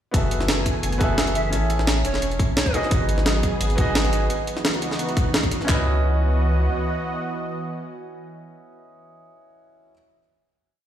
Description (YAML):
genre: liquid drum and bass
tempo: 173 BPM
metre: 4/4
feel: swing 54% on 16ths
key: C# minor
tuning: A4 = 440 Hz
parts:
  - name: warm grand piano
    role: accompaniment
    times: 0.1-9.9 s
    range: B3 to E5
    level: -28 LUFS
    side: equal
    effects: digital delay
  - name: lush unison pad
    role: sustained chords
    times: 0.4-9.2 s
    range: C#2 to G#5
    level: -28 LUFS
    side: right 2 dB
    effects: chorus, sidechain pumping
  - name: warm sub bass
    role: bass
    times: 0.1-6.7 s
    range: E1 to C#2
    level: -22 LUFS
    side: equal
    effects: none
  - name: garage drum kit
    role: drums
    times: 0.1-5.8 s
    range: handclaps, kick drum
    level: -24 LUFS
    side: equal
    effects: none
  - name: jungle sampler-style drum kit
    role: drums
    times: 0.1-5.7 s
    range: hi-hat, snare drum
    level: -25 LUFS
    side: right 1 dB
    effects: none
  - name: silver concert flute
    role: melody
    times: 1.4-2.8 s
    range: C#5 to E5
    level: -31 LUFS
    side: right 1 dB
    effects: dub echo
room: light reverb, digital ambience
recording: played on a big sound system in a bare room, large studio reverb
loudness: -19 LUFS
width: side -10 dB against mid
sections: 0.1-5.7 drop; 5.7-8.5 final chord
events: drop 0.1-5.7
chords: 0.1 F#m11; 1.5 Amaj7; 2.7 G#m7; 4.3 C#m11